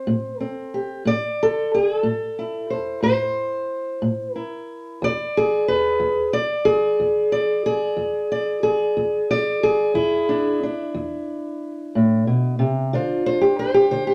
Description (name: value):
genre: acoustic country blues, solo or duo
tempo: 61 BPM (dotted quarters)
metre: 12/8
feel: straight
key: A minor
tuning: A4 = 445 Hz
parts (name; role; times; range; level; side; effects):
- fingerpicked steel-string acoustic guitar; solo; 0.0-14.1 s; E2 to D5; -22 LUFS; equal; none
room: wet studio reverb, RT60 0.5 s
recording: heard from further back in the room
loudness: -21 LUFS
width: mono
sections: 0.0-14.1 A section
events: none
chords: 0.0 Am; 5.0 E7; 12.9 Dm7